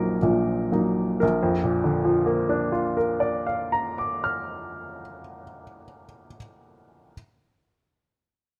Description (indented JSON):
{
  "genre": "classical, romantic character piece for solo piano",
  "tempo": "65 BPM",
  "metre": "4/4",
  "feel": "rubato",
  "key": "Bb major",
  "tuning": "A4 = 440 Hz",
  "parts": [
    { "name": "bright upright piano", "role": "solo", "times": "0.0-7.1 s", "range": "Bb1 to F6", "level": "-25 LUFS", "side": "equal", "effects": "none" }
  ],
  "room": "moderate recital hall reverb, RT60 1.5 s",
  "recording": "close, detailed microphones",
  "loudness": "-24 LUFS",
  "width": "mono",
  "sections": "0.0-1.2 A section; 1.2-4.9 B section",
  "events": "slowing down 0.0-1.2",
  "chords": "0.0 Ebm/Bb; 1.2 Bb"
}